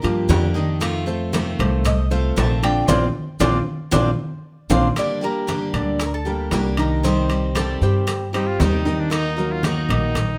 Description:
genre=latin, Cuban son and guajira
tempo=116 BPM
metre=4/4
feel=straight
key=unclear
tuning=A4 = 440 Hz
part: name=Cuban tres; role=melody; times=0.0-8.8 s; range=G4 to A5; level=-28 LUFS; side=equal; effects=plate reverb
part: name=picked steel-string acoustic guitar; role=accompaniment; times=0.0-10.2 s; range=C3 to G4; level=-28 LUFS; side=equal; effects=none
part: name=clear concert grand piano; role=arpeggios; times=0.0-10.3 s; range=D3 to Eb5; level=-27 LUFS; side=equal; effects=none
part: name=upright bass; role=bass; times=0.0-10.4 s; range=Bb1 to G2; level=-24 LUFS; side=equal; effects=none
part: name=bongos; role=percussion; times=0.0-10.4 s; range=none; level=-34 LUFS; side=equal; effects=none
part: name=congas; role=percussion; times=0.0-10.4 s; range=none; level=-30 LUFS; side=equal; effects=none
part: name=maracas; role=percussion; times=0.0-10.4 s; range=none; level=-40 LUFS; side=equal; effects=none
part: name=timbales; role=percussion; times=0.0-10.4 s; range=none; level=-31 LUFS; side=equal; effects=none
part: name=bright trumpet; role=second line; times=8.3-10.4 s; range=D4 to F4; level=-29 LUFS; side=equal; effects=none
room=light reverb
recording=close, detailed microphones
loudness=-20 LUFS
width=mono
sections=0.0-5.0 A section; 5.0-10.4 B section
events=Cuban tres solo 0.0-5.0; band accent 2.9-5.0; drum fill 4.2-5.0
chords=0.0 Gm7; 0.8 F7; 2.9 Bbadd9; 5.0 Gm; 7.0 Cm; 9.1 Ebm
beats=0.29 | 0.81 1.33 1.85 2.37 | 2.89 3.41 3.93 4.45 | 4.96 5.48 6.00 6.52 | 7.04 7.56 8.08 8.60 | 9.12 9.63 10.15

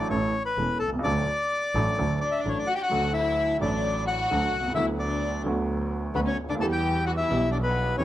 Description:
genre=tango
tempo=130 BPM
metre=4/4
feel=rubato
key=D major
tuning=A4 = 437 Hz
part: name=bandoneon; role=melody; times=0.0-8.0 s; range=A4 to A5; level=-27 LUFS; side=left 2 dB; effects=none
part: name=clear upright piano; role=accompaniment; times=0.0-8.0 s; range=E1 to A4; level=-29 LUFS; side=right 2 dB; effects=none
part: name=clear double bass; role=bass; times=0.0-8.0 s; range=E1 to E2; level=-30 LUFS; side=right 1 dB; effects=none
part: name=warm studio violin section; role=second line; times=2.2-8.0 s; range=B3 to A4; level=-31 LUFS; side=left 4 dB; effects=none
room=light reverb, small room reverb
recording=dry, close 1970s-style studio recording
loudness=-24 LUFS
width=side -13 dB against mid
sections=0.0-2.9 A section; 2.9-8.0 A section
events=none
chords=0.1 A; 1.0 D; 4.8 Bm/D; 6.6 Em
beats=0.11 0.58 | 1.04 1.51 1.98 2.44 | 2.91 3.38 3.84 4.31 | 4.77 5.23 5.69 6.15 | 6.61 7.08 7.54 8.00

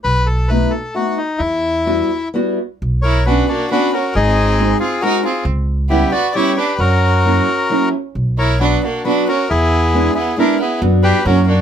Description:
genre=musette waltz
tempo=134 BPM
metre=3/4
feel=rubato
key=B harmonic minor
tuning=A4 = 438 Hz
part: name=bandoneon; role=melody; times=0.0-11.6 s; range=D4 to D5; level=-17 LUFS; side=left 3 dB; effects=none
part: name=upright bass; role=bass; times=0.0-11.6 s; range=G#1 to F#2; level=-16 LUFS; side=right 1 dB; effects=none
part: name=fingerpicked steel-string acoustic guitar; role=accompaniment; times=0.5-11.5 s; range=F#3 to F#4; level=-18 LUFS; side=right 1 dB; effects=none
part: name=clear violin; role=second line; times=3.0-11.6 s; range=A#3 to F#4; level=-21 LUFS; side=right 7 dB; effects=none
room=light reverb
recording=close, detailed microphones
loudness=-13 LUFS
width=side -8 dB against mid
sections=0.0-2.8 A section; 2.8-11.6 B section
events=none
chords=0.0 B7; 1.4 Emadd9; 2.8 Bmadd9; 4.2 G#7; 5.5 C#m7b5; 6.8 F#7; 8.2 Bm; 9.5 E7; 10.8 Bm/F#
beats=| 0.04 0.49 0.95 | 1.40 1.86 2.33 | 2.81 3.26 3.71 | 4.15 4.59 5.02 | 5.46 5.90 6.34 | 6.79 7.24 7.70 | 8.15 8.61 9.05 | 9.50 9.93 10.37 | 10.81 11.25

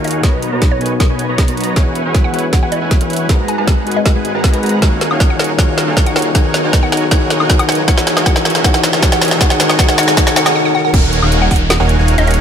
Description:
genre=future bass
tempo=157 BPM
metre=4/4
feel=half-time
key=Eb phrygian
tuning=A4 = 440 Hz
part: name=hollow square pluck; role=melody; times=0.0-12.3 s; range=A#4 to Ab5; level=-22 LUFS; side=right 1 dB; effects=chorus, sidechain pumping, tape echo
part: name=bell-like tine electric piano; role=accompaniment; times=0.0-11.0 s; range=B2 to Db5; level=-20 LUFS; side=left 5 dB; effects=sidechain pumping, tape echo
part: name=dense compressed supersaw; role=riff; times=0.0-12.4 s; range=Ab3 to A#5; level=-18 LUFS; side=right 1 dB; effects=sidechain pumping, low-pass filter
part: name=wide detuned saw bass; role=bass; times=0.0-12.4 s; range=Eb1 to Eb2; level=-20 LUFS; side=equal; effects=chorus, sidechain pumping, high-pass filter
part: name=trap drum kit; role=drums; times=0.0-12.4 s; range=crash cymbal, hi-hat, snare drum, toms, woodblock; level=-17 LUFS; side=equal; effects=high-pass filter on hats, high-pass filter on snare, high-pass filter on perc, high-pass filter on toms, high-pass filter on cymbals
part: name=riser and downlifter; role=sound effects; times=3.0-12.4 s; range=none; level=-24 LUFS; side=equal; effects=none
part: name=electronic kick drum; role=drums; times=0.2-11.6 s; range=none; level=-13 LUFS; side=equal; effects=none
room=moderate lush hall reverb, RT60 1.9 s, digital ambience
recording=none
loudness=-11 LUFS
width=side -8 dB against mid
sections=0.0-10.9 A section; 10.9-12.4 B section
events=build-up 0.0-10.9; drum fill 0.0-10.6, 10.6-10.9; break 10.6-10.9; drop 10.9-12.4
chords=0.2 Bmaj7; 1.8 E69; 3.3 Abm7; 4.8 Ebm11; 6.4 Bmaj7; 7.9 E69; 9.4 Ab5; 10.9 Ebm11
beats=| 0.24 0.62 1.00 1.38 | 1.76 2.15 2.53 2.91 | 3.29 3.68 4.06 4.44 | 4.82 5.20 5.59 5.97 | 6.35 6.73 7.12 7.50 | 7.88 8.26 8.64 9.03 | 9.41 9.79 10.17 10.55 | 10.94 11.32 11.70 12.08

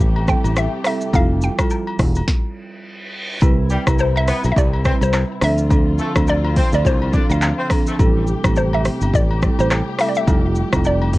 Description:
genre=afrobeats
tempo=105 BPM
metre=4/4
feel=swing 58% on 16ths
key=C major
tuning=A4 = 439 Hz
part: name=hollow square pluck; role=melody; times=0.0-11.2 s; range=C5 to G5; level=-22 LUFS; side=equal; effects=chorus
part: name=dark studio string section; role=sustained chords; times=0.0-11.2 s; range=C3 to G4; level=-29 LUFS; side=left 2 dB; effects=none
part: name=fingered electric bass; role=bass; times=0.0-11.2 s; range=E1 to D2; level=-18 LUFS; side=equal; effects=none
part: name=afro-pop drum kit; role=drums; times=0.0-11.2 s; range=handclaps, hi-hat, kick drum, rim click, shaker, snare drum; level=-18 LUFS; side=equal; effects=vintage 12-bit sampler grit
part: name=agogo bells and woodblock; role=percussion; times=0.2-11.1 s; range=none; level=-30 LUFS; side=left 4 dB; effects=none
part: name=marimba with medium mallets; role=accompaniment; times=0.3-10.9 s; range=F3 to B4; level=-25 LUFS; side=right 3 dB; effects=none
part: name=reverse cymbal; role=sound effects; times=2.6-3.4 s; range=none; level=-29 LUFS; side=right 1 dB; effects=none
part: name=warm horn section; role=second line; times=3.7-7.9 s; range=G3 to D5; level=-27 LUFS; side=left 1 dB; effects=ping-pong delay
room=little or no reverb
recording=worn, warbling old tape, cassette tape, warbly pitch drift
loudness=-15 LUFS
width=side -18 dB against mid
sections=0.0-3.4 A section; 3.4-11.2 B section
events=stop 2.3-3.4; reverse cymbal 2.6-3.4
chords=0.0 Am7; 1.1 Fmaj9; 3.4 Cmaj7; 5.4 Dm7; 8.0 Am7; 10.3 Fmaj9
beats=0.56 | 1.14 1.71 2.28 2.85 | 3.42 3.99 4.56 5.13 | 5.71 6.28 6.85 7.42 | 7.99 8.56 9.13 9.71 | 10.28 10.85

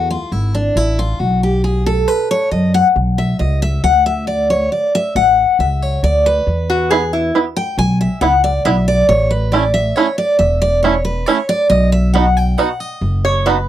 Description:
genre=bluegrass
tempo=137 BPM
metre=3/4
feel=straight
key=unclear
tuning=A4 = 437 Hz
part: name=picked steel-string acoustic guitar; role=accompaniment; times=0.0-13.7 s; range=D4 to G#5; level=-15 LUFS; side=left 1 dB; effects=none
part: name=upright bass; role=bass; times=0.0-13.7 s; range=E1 to F#2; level=-16 LUFS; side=equal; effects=none
part: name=lap resonator guitar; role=second line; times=6.7-7.4, 13.2-13.7 s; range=E4 to C#5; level=-16 LUFS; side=equal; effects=none
part: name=bluegrass banjo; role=melody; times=6.9-13.6 s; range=A3 to F#4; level=-15 LUFS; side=right 5 dB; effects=none
room=light reverb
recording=dry, close 1970s-style studio recording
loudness=-13 LUFS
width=side -12 dB against mid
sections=0.0-13.7 A section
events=steel-string acoustic guitar solo 0.0-13.7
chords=0.0 A5; 1.2 B5; 3.8 D; 6.5 E5; 9.1 A; 11.7 B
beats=0.32 0.76 | 1.20 1.64 2.08 | 2.52 2.96 3.40 | 3.84 4.28 4.72 | 5.16 5.59 6.03 | 6.47 6.91 7.34 | 7.78 8.22 8.65 | 9.09 9.53 9.96 | 10.40 10.83 11.27 | 11.71 12.14 12.58 | 13.02 13.46

